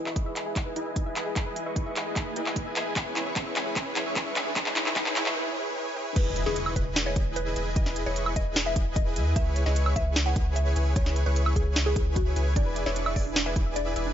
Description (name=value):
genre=future bass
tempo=150 BPM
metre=4/4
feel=half-time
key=E major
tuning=A4 = 440 Hz
part: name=dense compressed supersaw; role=riff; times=0.0-14.1 s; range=E4 to C#6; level=-32 LUFS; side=equal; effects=sidechain pumping, low-pass filter, dub echo
part: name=saturated sub bass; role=bass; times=0.0-14.1 s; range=E1 to E2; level=-28 LUFS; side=equal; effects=tube saturation, sidechain pumping, high-pass filter
part: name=riser and impact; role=sound effects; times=1.2-7.8 s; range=none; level=-37 LUFS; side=equal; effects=none
part: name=soft round pluck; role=arpeggios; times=0.1-5.3, 12.6-14.1 s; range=C#4 to E5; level=-37 LUFS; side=right 2 dB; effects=chorus, sidechain pumping, dub echo
part: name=trap drum kit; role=drums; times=0.1-14.0 s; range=crash cymbal, handclaps, hi-hat, snare drum, woodblock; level=-29 LUFS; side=equal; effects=high-pass filter on snare, high-pass filter on toms, high-pass filter on hats, high-pass filter on cymbals, high-pass filter on perc
part: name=electronic kick drum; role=drums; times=0.2-13.6 s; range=none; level=-27 LUFS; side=equal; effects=none
part: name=mallet-like synth pluck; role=melody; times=6.2-14.0 s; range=F#4 to F#5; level=-34 LUFS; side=left 2 dB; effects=chorus, phaser, sidechain pumping, dub echo
room=light reverb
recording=high-pass filter, nothing above 7.6 kHz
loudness=-24 LUFS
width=side -10 dB against mid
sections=0.0-6.2 A section; 6.2-14.1 B section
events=build-up 0.0-6.2; drum fill 0.0-5.4; filter sweep on supersaw synth 0.0-6.2; filter sweep 0.0-6.2; riser 1.2-5.4; break 5.4-6.2; drop 6.2-14.1; impact 6.2-7.8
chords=0.0 Emaj7; 3.0 C#m7; 6.2 Emaj7; 9.4 C#m7; 12.6 E7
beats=0.16 0.56 0.96 | 1.36 1.76 2.16 2.56 | 2.96 3.36 3.76 4.16 | 4.56 4.96 5.36 5.76 | 6.16 6.56 6.96 7.36 | 7.76 8.16 8.56 8.96 | 9.36 9.76 10.16 10.56 | 10.96 11.36 11.76 12.16 | 12.56 12.96 13.36 13.76